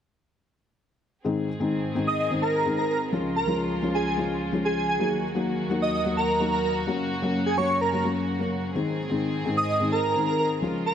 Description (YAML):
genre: EDM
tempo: 128 BPM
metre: 4/4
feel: straight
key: unclear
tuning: A4 = 440 Hz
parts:
  - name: felt-muted upright piano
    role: accompaniment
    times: 1.2-10.8 s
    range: Ab2 to Bb4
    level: -26 LUFS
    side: left 3 dB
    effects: none
  - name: clear studio string section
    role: sustained chords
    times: 1.2-10.9 s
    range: Db2 to Ab4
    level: -32 LUFS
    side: right 1 dB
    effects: low-pass filter
  - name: airy dreamy lead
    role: melody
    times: 2.1-10.9 s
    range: Ab4 to Eb5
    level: -26 LUFS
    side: right 2 dB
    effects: chorus, tape echo
room: moderate lush hall reverb, RT60 2.6 s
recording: none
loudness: -23 LUFS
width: side -9 dB against mid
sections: 1.3-10.9 A section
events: none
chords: 1.3 Ab; 3.1 Db; 5.0 Ebm; 6.9 Gb; 8.8 Ab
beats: | 1.25 1.72 2.19 2.66 | 3.13 3.59 4.06 4.53 | 5.00 5.47 5.94 6.41 | 6.88 7.34 7.81 8.28 | 8.75 9.22 9.69 10.16 | 10.63